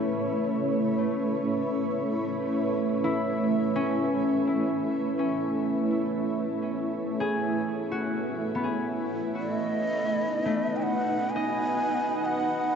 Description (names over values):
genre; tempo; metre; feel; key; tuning
ambient; free time; none; none; unclear; A4 = 440 Hz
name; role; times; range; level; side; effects
granular cloud pad; sustained chords; 0.0-12.8 s; A3 to F#5; -27 LUFS; right 1 dB; built-in reverb, shimmer reverb
concert harp; arpeggios; 0.0-12.8 s; A3 to D#5; -32 LUFS; left 2 dB; ping-pong delay
analog drone; drone; 4.4-12.8 s; B3 to B4; -41 LUFS; left 1 dB; chorus
breathy mellow shakuhachi; melody; 9.4-12.8 s; D#5 to G#5; -28 LUFS; equal; none
room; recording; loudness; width
wet huge ambient reverb, RT60 7.3 s; dark, warm production, nothing above 7.7 kHz; -25 LUFS; side -7 dB against mid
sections
0.0-12.8 A section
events
fade-in on synth drone 0.0-12.8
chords
0.0 Aadd9; 9.4 B